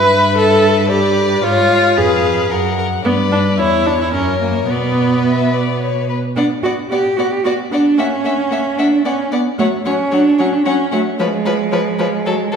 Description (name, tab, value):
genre	quick classical-period movement for string quartet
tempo	112 BPM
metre	3/4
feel	rubato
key	B minor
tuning	A4 = 440 Hz
part	warm violin	melody	0.0-12.6 s	B4 to F#5	-22 LUFS	left 8 dB	none
part	rich violin	second line	0.0-12.6 s	A4 to E5	-22 LUFS	left 5 dB	none
part	clear viola	accompaniment	0.0-12.6 s	E#3 to B4	-17 LUFS	right 1 dB	none
part	rich cello	bass	0.0-12.5 s	E2 to G4	-17 LUFS	right 2 dB	none
room	wet recital hall reverb, RT60 1.8 s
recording	heard from further back in the room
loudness	-13 LUFS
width	side -6 dB against mid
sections	0.0-6.4 A section; 6.4-12.6 A section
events	none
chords	0.0 Em/G; 1.4 C#7/G#; 2.5 F#; 3.0 G; 3.6 C#m/E; 4.1 F#; 4.7 Bm; 8.0 F#7/A#; 9.1 N.C.; 9.6 F#5; 11.2 C#7/E#